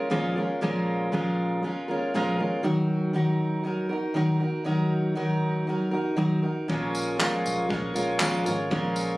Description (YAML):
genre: acoustic pop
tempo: 119 BPM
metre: 4/4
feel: straight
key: unclear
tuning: A4 = 444 Hz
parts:
  - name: fingerpicked steel-string acoustic guitar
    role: accompaniment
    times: 0.0-9.2 s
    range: Bb2 to Bb4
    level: -24 LUFS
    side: equal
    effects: none
  - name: tonewheel organ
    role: sustained chords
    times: 6.7-9.2 s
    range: Bb4 to Db6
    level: -34 LUFS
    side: equal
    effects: slow rotary speaker
  - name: vintage muted fingered electric bass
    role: bass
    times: 6.7-9.2 s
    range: Ab1 to Bb1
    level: -37 LUFS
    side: left 1 dB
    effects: none
  - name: jazz brush drum kit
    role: drums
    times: 6.7-9.1 s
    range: handclaps, kick drum, tambourine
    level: -31 LUFS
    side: equal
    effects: none
  - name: tambourine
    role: percussion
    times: 7.2-8.3 s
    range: none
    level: -37 LUFS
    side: left 1 dB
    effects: none
room: light reverb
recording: recorded on a phone in the room, studio reverb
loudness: -24 LUFS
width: side -20 dB against mid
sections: 0.0-9.2 A section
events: none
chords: 0.0 Bbm7; 2.6 Ebm; 6.7 Bbm7